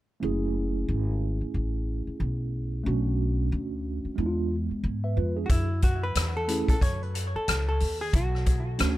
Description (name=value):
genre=hip hop, jazz-hop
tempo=91 BPM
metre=4/4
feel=swing 60% on 16ths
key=F# minor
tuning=A4 = 440 Hz
part: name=mellow tine electric piano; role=accompaniment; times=0.2-9.0 s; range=G#3 to E5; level=-31 LUFS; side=right 3 dB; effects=medium stereo tremolo
part: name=upright bass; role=bass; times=0.2-9.0 s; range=F#1 to G#2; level=-28 LUFS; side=equal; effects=none
part: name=hollow-body jazz guitar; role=melody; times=5.5-9.0 s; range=E4 to C#5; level=-32 LUFS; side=equal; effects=dub echo
part: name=vintage drum kit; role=drums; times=5.5-9.0 s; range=hi-hat, kick drum, rim click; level=-26 LUFS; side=equal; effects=none
room=little or no reverb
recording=echo-heavy mix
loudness=-25 LUFS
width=side -16 dB against mid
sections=0.2-5.5 A section; 5.5-9.0 B section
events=none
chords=0.2 F#m7; 2.9 Bm7; 4.2 E7b9; 5.5 F#m7; 8.1 Bm7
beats=| 0.22 0.88 1.54 2.20 | 2.86 3.52 4.18 4.84 | 5.50 6.16 6.82 7.47 | 8.13 8.79